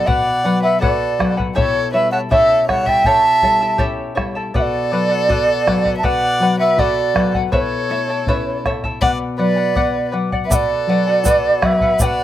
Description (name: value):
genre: andean folk, Andean ensemble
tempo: 80 BPM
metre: 2/4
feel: straight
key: unclear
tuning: A4 = 440 Hz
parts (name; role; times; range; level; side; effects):
- mellow large quena; melody; 0.0-12.2 s; C#5 to A5; -16 LUFS; right 2 dB; slapback echo
- clear violin; second line; 0.0-12.2 s; A4 to E5; -26 LUFS; left 4 dB; slapback echo
- charango; accompaniment; 0.0-12.2 s; E4 to F#5; -22 LUFS; left 3 dB; slapback echo
- nylon-string guitar; accompaniment; 0.0-12.2 s; B2 to F#4; -23 LUFS; left 2 dB; none
- bombo; percussion; 0.1-12.2 s; none; -22 LUFS; equal; none
- egg shaker; percussion; 10.5-12.2 s; none; -24 LUFS; right 4 dB; none
room: little or no reverb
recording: recorded outdoors, with no room sound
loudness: -14 LUFS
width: side -12 dB against mid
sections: 0.0-10.5 A section; 10.5-12.2 A section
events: none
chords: 0.0 D/B; 1.6 A7/B; 4.5 D/B; 7.5 A/B; 9.0 Bm; 10.5 D/B